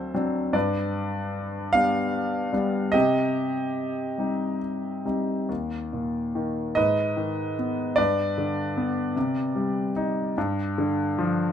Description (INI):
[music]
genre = classical, lyrical solo piano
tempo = 50 BPM (dotted quarters)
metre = 6/8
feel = rubato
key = C minor, Eb major from 5.5 s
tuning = A4 = 444 Hz
[part]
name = clear grand piano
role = solo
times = 0.0-11.5 s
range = D2 to A5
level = -23 LUFS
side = equal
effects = none
[sound]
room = light reverb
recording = none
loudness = -23 LUFS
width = side -9 dB against mid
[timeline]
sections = 0.0-5.5 A section; 5.5-11.5 B section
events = none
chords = 0.0 D7; 0.6 G; 2.9 Cm; 5.5 Eb5; 6.8 Abm; 8.0 G; 9.2 Cm; 10.4 G5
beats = | 0.55 1.75 | 2.95 4.19 | 5.50 6.77 | 7.98 9.16 | 10.37